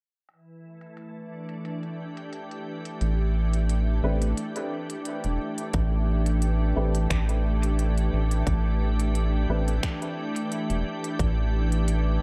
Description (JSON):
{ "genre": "ambient dub", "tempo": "88 BPM", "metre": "4/4", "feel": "swing 54% on 16ths", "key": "unclear", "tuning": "A4 = 439 Hz", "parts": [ { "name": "soft additive organ-like pad", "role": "sustained chords", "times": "0.5-12.2 s", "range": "E3 to G4", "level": "-34 LUFS", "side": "equal", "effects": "ensemble chorus, built-in reverb" }, { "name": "organic electronic drum kit", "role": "drums", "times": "0.3-12.0 s", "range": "finger snaps, hi-hat", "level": "-39 LUFS", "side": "equal", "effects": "overdrive, low-pass filter on hats, low-pass filter on snare, low-pass filter on room, dub echo" }, { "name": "round analog bass", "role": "bass", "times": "3.0-12.2 s", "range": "E1 to A1", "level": "-26 LUFS", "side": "equal", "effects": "none" }, { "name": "warm upright piano", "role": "stabs", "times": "4.0-9.7 s", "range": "A3 to B4", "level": "-37 LUFS", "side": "equal", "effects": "low-pass filter, dub echo" }, { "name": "electronic kick drum", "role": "drums", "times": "5.7-11.3 s", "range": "none", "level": "-32 LUFS", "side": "equal", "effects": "overdrive" } ], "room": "light reverb", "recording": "dark, warm production", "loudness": "-26 LUFS", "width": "mono", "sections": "0.3-5.7 A section; 5.7-12.2 B section", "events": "filter sweep on drum 0.3-5.7; filter sweep on upright piano 5.7-12.2", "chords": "0.3 A7sus4" }